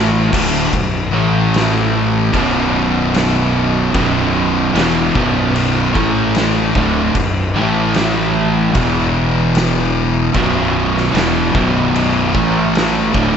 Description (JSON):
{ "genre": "stoner and doom metal", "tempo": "75 BPM", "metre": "4/4", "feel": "straight", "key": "B minor", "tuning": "A4 = 439 Hz", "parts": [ { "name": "distorted electric guitar", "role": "riff", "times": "0.0-13.4 s", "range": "B1 to A3", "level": "-19 LUFS", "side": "equal", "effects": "distortion" }, { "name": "fuzz guitar", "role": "riff", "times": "0.0-13.4 s", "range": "B1 to A3", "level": "-19 LUFS", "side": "right 8 dB", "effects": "distortion" }, { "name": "thick fuzz guitar", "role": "riff", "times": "0.0-13.4 s", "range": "B1 to A3", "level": "-19 LUFS", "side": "left 9 dB", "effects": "distortion" }, { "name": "fuzz fingered electric bass", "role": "bass", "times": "0.0-13.4 s", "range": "B0 to A1", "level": "-21 LUFS", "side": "equal", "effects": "overdrive, tube saturation" }, { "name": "oversized low-tuned drum kit", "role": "drums", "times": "0.3-13.3 s", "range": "crash cymbal, kick drum, snare drum", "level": "-20 LUFS", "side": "left 1 dB", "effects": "none" } ], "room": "light reverb", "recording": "nothing above 7.9 kHz", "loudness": "-13 LUFS", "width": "side -7 dB against mid", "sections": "0.0-13.4 A section", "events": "none", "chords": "0.3 Bm; 1.1 A5; 2.3 B5; 5.9 A5; 6.7 Bm; 7.5 A5; 8.8 E5; 10.3 B5; 12.3 A5", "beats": "| 0.73 1.53 2.34 3.14 | 3.94 4.74 5.55 6.35 | 7.15 7.95 8.75 9.55 | 10.35 11.15 11.95 12.75" }